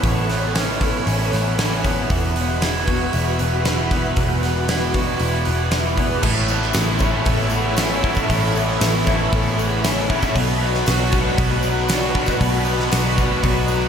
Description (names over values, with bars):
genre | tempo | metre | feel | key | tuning
rock, shoegaze and dream pop | 116 BPM | 4/4 | straight | A major | A4 = 440 Hz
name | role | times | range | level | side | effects
phased string machine | sustained chords | 0.0-13.9 s | F#4 to B5 | -27 LUFS | equal | ensemble chorus, phaser
biting overdriven guitar | riff | 0.0-13.9 s | E2 to F#4 | -24 LUFS | right 6 dB | reverse reverb
raw garage guitar | riff | 0.0-13.9 s | E2 to F#4 | -25 LUFS | left 8 dB | overdrive, ensemble chorus
vintage muted picked electric bass | bass | 0.0-13.9 s | E1 to B1 | -22 LUFS | equal | none
huge arena drum kit | drums | 0.0-13.6 s | crash cymbal, hi-hat, kick drum, snare drum | -23 LUFS | equal | none
tight distorted guitar | riff | 6.2-13.9 s | A2 to B3 | -26 LUFS | equal | distortion
tambourine | percussion | 6.2-13.9 s | none | -37 LUFS | left 9 dB | none
room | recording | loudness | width
moderate cathedral reverb, RT60 4.7 s | dreamy mix soaked in reverb | -17 LUFS | side -7 dB against mid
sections
0.0-6.2 A section; 6.2-13.9 B section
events
none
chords
0.0 Aadd9; 2.1 Esus2; 6.2 Aadd9; 10.3 Bm